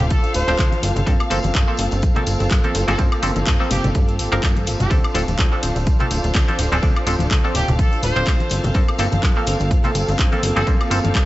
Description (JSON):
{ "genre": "filtered disco house", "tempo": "125 BPM", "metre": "4/4", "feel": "swing 56% on 16ths", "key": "unclear", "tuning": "A4 = 438 Hz", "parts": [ { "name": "clear trumpet section", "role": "melody", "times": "0.0-10.7 s", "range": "G4 to C5", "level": "-28 LUFS", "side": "equal", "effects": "vintage 12-bit sampler grit, sidechain pumping, tape echo" }, { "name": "dark symphonic string section", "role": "sustained chords", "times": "0.0-11.3 s", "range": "Bb3 to F5", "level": "-28 LUFS", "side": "equal", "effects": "sidechain pumping" }, { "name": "direct-recorded clean electric guitar", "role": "riff", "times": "0.0-11.3 s", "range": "Bb3 to A4", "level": "-28 LUFS", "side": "equal", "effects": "sidechain pumping" }, { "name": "plucky analog bass", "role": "bass", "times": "0.0-11.2 s", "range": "D1 to G2", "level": "-22 LUFS", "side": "equal", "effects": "sidechain pumping" }, { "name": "house drum kit", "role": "drums", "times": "0.0-11.3 s", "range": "handclaps, hi-hat, woodblock", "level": "-26 LUFS", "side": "left 1 dB", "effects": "sidechain pumping on hats, sidechain pumping on perc" }, { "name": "congas and tambourine", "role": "percussion", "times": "0.0-11.3 s", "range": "none", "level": "-29 LUFS", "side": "left 1 dB", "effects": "sidechain pumping on perc" }, { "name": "electronic kick drum", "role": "drums", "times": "0.1-11.3 s", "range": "none", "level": "-18 LUFS", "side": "equal", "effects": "none" }, { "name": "muted clav", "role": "accompaniment", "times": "0.5-11.0 s", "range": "F3 to D5", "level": "-25 LUFS", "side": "equal", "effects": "phaser, sidechain pumping" } ], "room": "light reverb, digital ambience", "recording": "nothing above 7.9 kHz", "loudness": "-16 LUFS", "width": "side -16 dB against mid", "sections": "0.0-11.3 A section", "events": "none", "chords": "0.0 Dm7; 0.8 Gm11; 4.9 Dm7; 8.5 Gm11", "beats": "0.11 0.59 | 1.07 1.55 2.03 2.51 | 2.99 3.47 3.95 4.43 | 4.91 5.39 5.87 6.35 | 6.83 7.31 7.79 8.27 | 8.75 9.23 9.71 10.19 | 10.67 11.15" }